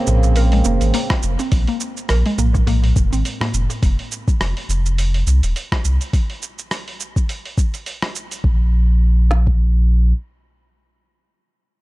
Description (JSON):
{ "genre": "organic downtempo", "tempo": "104 BPM", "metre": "4/4", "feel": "swing 56% on 16ths", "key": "unclear", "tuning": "A4 = 440 Hz", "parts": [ { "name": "pedal harmonium", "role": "accompaniment", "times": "0.0-1.3 s", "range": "Db3 to C4", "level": "-25 LUFS", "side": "right 5 dB", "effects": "sidechain pumping, low-pass filter, tape echo" }, { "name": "mallet-like synth pluck", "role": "arpeggios", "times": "0.0-3.8 s", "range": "Ab3 to Bb4", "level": "-25 LUFS", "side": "equal", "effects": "chorus, tape echo" }, { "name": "warm sub bass", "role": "bass", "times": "0.1-10.1 s", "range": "Eb1 to C2", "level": "-15 LUFS", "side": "equal", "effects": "sidechain pumping" }, { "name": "dusty soul sampler-style drum kit", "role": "drums", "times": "0.1-8.4 s", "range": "cabasa, hi-hat, rim click", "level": "-26 LUFS", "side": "right 1 dB", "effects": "none" }, { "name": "darbuka", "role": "percussion", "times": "0.1-3.8 s", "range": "none", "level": "-26 LUFS", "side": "equal", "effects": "none" }, { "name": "organic electronic drum kit", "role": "drums", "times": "1.1-9.6 s", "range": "kick drum, snare drum", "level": "-18 LUFS", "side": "equal", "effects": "overdrive" } ], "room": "digital ambience", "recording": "dark, warm production, faint mains hum", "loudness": "-16 LUFS", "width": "side -19 dB against mid", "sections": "0.0-8.4 A section; 8.4-10.7 B section", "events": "filter sweep on harmonium 0.0-1.5", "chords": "0.0 Bbmadd9; 3.8 F5; 8.4 N.C." }